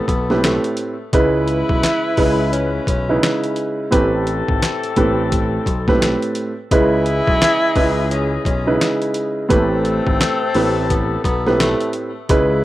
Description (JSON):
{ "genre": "hip hop, boom-bap hip-hop", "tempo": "86 BPM", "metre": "4/4", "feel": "swing 60% on 16ths", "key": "unclear", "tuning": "A4 = 440 Hz", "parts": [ { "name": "breathy tenor saxophone", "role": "melody", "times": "0.0-12.6 s", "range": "A3 to E4", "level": "-22 LUFS", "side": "equal", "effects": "high-pass filter, low-pass filter, ping-pong delay" }, { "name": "dark concert grand piano", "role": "accompaniment", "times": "0.0-12.6 s", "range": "A2 to D#5", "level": "-18 LUFS", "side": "right 1 dB", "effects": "high-pass filter, low-pass filter" }, { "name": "mellow horn section", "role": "stabs", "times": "0.0-12.6 s", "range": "E3 to D#5", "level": "-27 LUFS", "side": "left 6 dB", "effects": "high-pass filter, low-pass filter, plate reverb, ping-pong delay" }, { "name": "picked electric bass", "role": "bass", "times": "0.1-12.6 s", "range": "G#1 to C#2", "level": "-22 LUFS", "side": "equal", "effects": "none" }, { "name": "trip hop sampler-style drum kit", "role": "drums", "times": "0.1-12.5 s", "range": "handclaps, hi-hat, kick drum, snare drum", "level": "-20 LUFS", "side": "equal", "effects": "none" } ], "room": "light reverb", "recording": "rough home demo mix", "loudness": "-15 LUFS", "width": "side -15 dB against mid", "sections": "0.0-12.6 A section", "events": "none", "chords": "0.0 Am9; 1.1 C#m9; 3.9 Am9; 6.7 C#m9; 9.5 Am9", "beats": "0.43 | 1.13 1.83 2.53 3.23 | 3.92 4.62 5.32 6.02 | 6.71 7.41 8.11 8.81 | 9.50 10.20 10.90 11.60 | 12.29" }